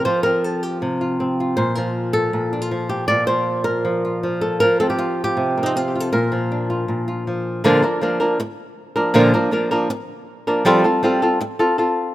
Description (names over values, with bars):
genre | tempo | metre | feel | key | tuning
flamenco | 158 BPM | 4/4 | straight | Bb major | A4 = 440 Hz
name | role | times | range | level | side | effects
flamenco guitar | solo | 0.0-12.1 s | Bb2 to D5 | -17 LUFS | equal | none
room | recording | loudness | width
light reverb | rough home demo mix | -17 LUFS | side -15 dB against mid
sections
0.0-7.6 A section; 7.6-12.1 B section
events
none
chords
0.0 Fsus2; 1.6 Bb5; 4.6 Fsus2; 6.1 Bb; 10.7 Fadd9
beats
| 0.06 0.44 0.82 1.20 | 1.58 1.96 2.33 2.71 | 3.09 3.47 3.85 4.23 | 4.61 4.99 5.37 5.75 | 6.13 6.51 6.88 7.26 | 7.64 8.02 8.39 8.77 | 9.15 9.52 9.90 10.27 | 10.65 11.03 11.40 11.78